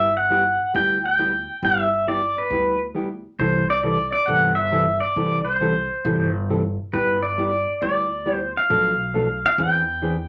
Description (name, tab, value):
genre	country, western swing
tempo	136 BPM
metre	4/4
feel	swing 67% on 8ths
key	G major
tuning	A4 = 439 Hz
part	pedal steel guitar	melody	0.0-10.3 s	B4 to G5	-22 LUFS	equal	none
part	hollow-body jazz guitar	accompaniment	0.0-10.2 s	B2 to A4	-27 LUFS	equal	none
part	upright bass	bass	0.0-10.3 s	G1 to E2	-33 LUFS	equal	none
room	wet studio ambience, RT60 0.5 s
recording	none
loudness	-21 LUFS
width	mono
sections	0.0-10.3 A section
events	none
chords	0.0 G6; 3.4 C6; 6.9 G6; 8.7 Bm7b5; 9.6 E7alt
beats	0.30 0.74 1.19 | 1.63 2.07 2.51 2.96 | 3.40 3.84 4.28 4.73 | 5.17 5.61 6.05 6.49 | 6.94 7.38 7.82 8.26 | 8.70 9.15 9.59 10.03